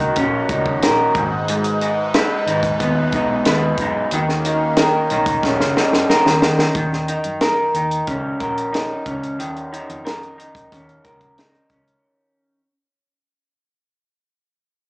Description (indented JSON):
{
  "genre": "indie pop, bedroom pop",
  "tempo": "91 BPM",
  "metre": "4/4",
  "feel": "straight",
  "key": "Eb minor",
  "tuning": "A4 = 441 Hz",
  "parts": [
    { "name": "electric guitar through a small old amp", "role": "accompaniment", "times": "0.0-12.6 s", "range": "Ab2 to Cb5", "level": "-18 LUFS", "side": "equal", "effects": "wide subtle chorus, warbly pitch drift, slapback echo" },
    { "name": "phased analog pad", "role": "sustained chords", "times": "0.0-6.7 s", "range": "Eb3 to Cb5", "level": "-24 LUFS", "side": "equal", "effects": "phaser, chorus" },
    { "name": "vintage muted fingered electric bass", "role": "bass", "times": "0.0-12.0 s", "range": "Gb1 to Eb3", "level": "-26 LUFS", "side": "equal", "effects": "none" },
    { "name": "compact cocktail drum kit", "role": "drums", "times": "0.0-12.0 s", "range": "hi-hat, kick drum, snare drum", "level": "-20 LUFS", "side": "equal", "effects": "none" }
  ],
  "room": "light reverb, studio reverb",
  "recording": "live gig heard through the venue's PA, club reverb, small speaker sound",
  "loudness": "-16 LUFS",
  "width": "side -39 dB against mid",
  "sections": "0.0-6.8 A section; 6.8-12.0 B section",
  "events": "drum fill 5.4-6.8; fade-out 6.8-12.0",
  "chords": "0.0 Ebm7; 1.2 Abm7; 4.1 Ebm7; 6.8 Eb7(no3)",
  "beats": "0.16 0.82 | 1.48 2.14 2.80 3.46 | 4.12 4.77 5.43 6.09 | 6.75 7.41 8.07 8.73 | 9.39 10.05 10.71 11.37"
}